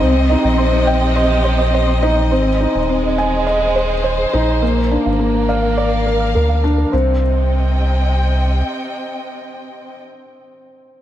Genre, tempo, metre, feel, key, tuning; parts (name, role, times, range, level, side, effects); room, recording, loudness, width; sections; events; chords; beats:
piano and strings electronica; 104 BPM; 4/4; straight; C minor; A4 = 442 Hz
dark studio string section; sustained chords; 0.0-10.0 s; C3 to G5; -21 LUFS; equal
soft round pluck; arpeggios; 0.0-7.2 s; Bb4 to F6; -27 LUFS; right 2 dB
felt-muted upright piano; riff; 0.0-11.0 s; Bb3 to Ab5; -19 LUFS; equal; digital delay
round analog bass; bass; 0.0-8.6 s; Eb1 to D2; -17 LUFS; equal
moderate lush hall reverb, RT60 3.0 s; -14 LUFS; side -12 dB against mid
0.0-6.9 A section; 6.9-9.2 B section
0.0 Cm; 2.3 Ab; 4.6 Bb; 6.9 Cm
| 0.01 0.58 1.16 1.74 | 2.31 2.89 3.47 4.05 | 4.62 5.20 5.78 6.35 | 6.93 7.51 8.08 8.66